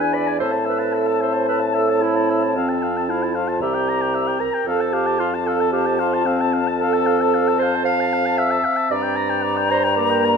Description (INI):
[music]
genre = quick classical-period movement for wind quintet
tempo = 113 BPM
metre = 4/4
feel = rubato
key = unclear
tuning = A4 = 441 Hz
[part]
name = hollow concert flute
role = melody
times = 0.0-10.4 s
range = G#5 to Bb5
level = -25 LUFS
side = left 8 dB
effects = none
[part]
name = mellow oboe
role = second line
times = 0.0-10.4 s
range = D5 to B5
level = -25 LUFS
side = left 4 dB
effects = none
[part]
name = mellow French horn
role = accompaniment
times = 0.0-10.4 s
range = Bb3 to D4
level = -26 LUFS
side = left 2 dB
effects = none
[part]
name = mellow clarinet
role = accompaniment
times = 0.0-10.4 s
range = C4 to F5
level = -22 LUFS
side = right 5 dB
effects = none
[part]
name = mellow bassoon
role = bass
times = 0.0-10.4 s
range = C2 to A2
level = -24 LUFS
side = right 1 dB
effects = none
[sound]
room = moderate recital hall reverb, RT60 1.4 s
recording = none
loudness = -17 LUFS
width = side -6 dB against mid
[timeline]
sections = 0.0-10.4 A section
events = none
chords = 0.4 Am; 2.6 F; 3.6 C7; 4.7 F; 8.9 Gm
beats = | 0.40 0.94 1.49 2.02 | 2.56 3.09 3.62 4.15 | 4.67 5.20 5.72 6.26 | 6.80 7.33 7.85 8.38 | 8.91 9.45 9.98